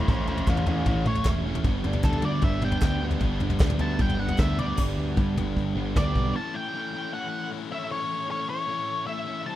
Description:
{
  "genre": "indie rock",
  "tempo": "153 BPM",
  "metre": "4/4",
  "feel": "straight",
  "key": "A mixolydian",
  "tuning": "A4 = 439 Hz",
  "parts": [
    { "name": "octave-fuzz lead guitar", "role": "melody", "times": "0.0-9.6 s", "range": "C#4 to A5", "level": "-31 LUFS", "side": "left 1 dB", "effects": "distortion, tape echo" },
    { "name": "biting overdriven guitar", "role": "riff", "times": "0.0-9.6 s", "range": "G2 to G4", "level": "-33 LUFS", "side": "left 7 dB", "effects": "none" },
    { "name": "overdriven semi-hollow guitar", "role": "riff", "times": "0.0-6.3 s", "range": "G2 to E4", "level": "-30 LUFS", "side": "right 5 dB", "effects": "wide subtle chorus" },
    { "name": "growling picked electric bass", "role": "bass", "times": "0.0-6.3 s", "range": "E1 to G2", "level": "-29 LUFS", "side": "equal", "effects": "overdrive" },
    { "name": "soft brush drum kit", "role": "drums", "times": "0.1-6.2 s", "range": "crash cymbal, kick drum, snare drum, toms", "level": "-26 LUFS", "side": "equal", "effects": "none" },
    { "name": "group handclap", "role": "percussion", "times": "0.5-4.5 s", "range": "none", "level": "-42 LUFS", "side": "left 3 dB", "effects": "none" },
    { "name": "string machine, violins", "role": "sustained chords", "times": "6.4-9.6 s", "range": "G4 to C#6", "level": "-43 LUFS", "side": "equal", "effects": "ensemble chorus" }
  ],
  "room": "studio ambience",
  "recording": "rough home demo mix",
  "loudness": "-24 LUFS",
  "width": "side -13 dB against mid",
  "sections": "0.0-4.8 A section; 4.8-6.3 B section; 6.3-9.6 C section",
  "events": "lead electric guitar solo 0.0-4.8; drum fill 4.4-4.8, 5.6-6.3",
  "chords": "0.0 A; 1.6 G; 6.3 A",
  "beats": "| 0.08 0.47 0.87 1.26 | 1.65 2.04 2.43 2.82 | 3.21 3.61 4.00 4.39 | 4.78 5.17 5.56 5.95 | 6.34 6.73 7.12 7.51 | 7.90 8.29 8.68 9.06 | 9.45"
}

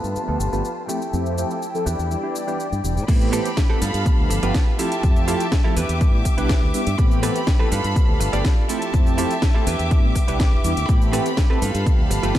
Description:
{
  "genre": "filtered disco house",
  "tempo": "123 BPM",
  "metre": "4/4",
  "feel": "straight",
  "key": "A minor",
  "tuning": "A4 = 440 Hz",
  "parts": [
    { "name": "bright studio violin section", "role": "sustained chords", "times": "0.0-12.4 s", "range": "C4 to D6", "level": "-28 LUFS", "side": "left 1 dB", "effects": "sidechain pumping, low-pass filter" },
    { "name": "direct-recorded clean electric guitar", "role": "riff", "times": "0.0-12.4 s", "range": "A3 to D5", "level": "-30 LUFS", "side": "right 4 dB", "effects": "sidechain pumping, low-pass filter" },
    { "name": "modern bright fingered electric bass", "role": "bass", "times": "0.0-12.3 s", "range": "E1 to A2", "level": "-24 LUFS", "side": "equal", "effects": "sidechain pumping, low-pass filter" },
    { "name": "house drum kit", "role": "drums", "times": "0.0-12.4 s", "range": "crash cymbal, hi-hat, shaker, snare drum", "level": "-30 LUFS", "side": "equal", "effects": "sidechain pumping on perc, sidechain pumping on hats, sidechain pumping on cymbals" },
    { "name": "mellow synth brass", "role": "accompaniment", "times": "0.2-12.3 s", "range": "E3 to A4", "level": "-26 LUFS", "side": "right 1 dB", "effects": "chorus, phaser, sidechain pumping, low-pass filter" },
    { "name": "electronic kick drum", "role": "drums", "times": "3.1-12.4 s", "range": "none", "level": "-18 LUFS", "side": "equal", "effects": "none" }
  ],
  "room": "light reverb, digital ambience",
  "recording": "none",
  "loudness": "-18 LUFS",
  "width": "side -13 dB against mid",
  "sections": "0.0-3.1 A section; 3.1-12.4 B section",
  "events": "filter sweep 0.0-3.1; drop 3.1-12.4",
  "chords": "0.0 G9; 0.9 Fmaj9; 1.9 Em7; 3.1 Am9; 3.8 G9; 4.8 Fmaj9; 5.8 Em7; 7.0 Am9; 7.7 G9; 8.7 Fmaj9; 9.7 Em7; 10.9 Am9; 11.6 G9",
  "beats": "0.16 0.64 | 1.13 1.62 2.11 2.60 | 3.08 3.57 4.06 4.55 | 5.03 5.52 6.01 6.50 | 6.99 7.47 7.96 8.45 | 8.94 9.43 9.91 10.40 | 10.89 11.38 11.86 12.35"
}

